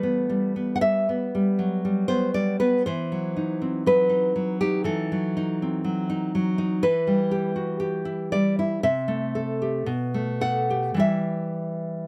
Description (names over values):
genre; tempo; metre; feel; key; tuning
romantic piece for solo classical guitar; 52-61 BPM; 4/4; rubato; E minor; A4 = 440 Hz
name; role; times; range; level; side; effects
nylon-string guitar; solo; 0.0-12.1 s; B2 to F#5; -25 LUFS; equal; none
room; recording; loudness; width
little or no reverb; close, detailed microphones; -25 LUFS; mono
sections
0.0-12.1 A section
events
none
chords
0.0 Em; 2.8 D#dim7/E; 6.8 Em; 8.8 Am/C; 9.9 B5; 11.0 Em